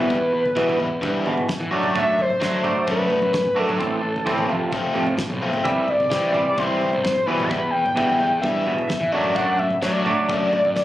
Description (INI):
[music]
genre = indie rock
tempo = 129 BPM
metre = 4/4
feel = straight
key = unclear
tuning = A4 = 442 Hz
[part]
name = overdriven synth lead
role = melody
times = 0.0-10.8 s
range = A4 to B5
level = -22 LUFS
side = left 1 dB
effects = distortion, chorus
[part]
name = crunchy overdriven guitar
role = riff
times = 0.0-10.6 s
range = E3 to F#4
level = -26 LUFS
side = left 4 dB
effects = none
[part]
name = twangy electric guitar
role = riff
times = 0.0-10.8 s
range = E2 to D4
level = -25 LUFS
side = right 3 dB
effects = analog chorus, tape echo
[part]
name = fuzz picked electric bass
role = bass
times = 0.0-10.8 s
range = F1 to F#3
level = -27 LUFS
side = equal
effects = overdrive
[part]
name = cloth-damped thuddy drum kit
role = drums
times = 0.0-10.8 s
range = kick drum, snare drum, toms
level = -31 LUFS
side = equal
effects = none
[sound]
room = light reverb, studio reverb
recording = recorded on a phone in the room, club ambience, compression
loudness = -19 LUFS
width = side -14 dB against mid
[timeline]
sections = 0.0-10.8 A section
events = none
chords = 0.0 Em; 1.7 D/F#; 3.8 Am; 4.5 F; 5.7 Cadd9; 7.3 Em; 9.1 D/F#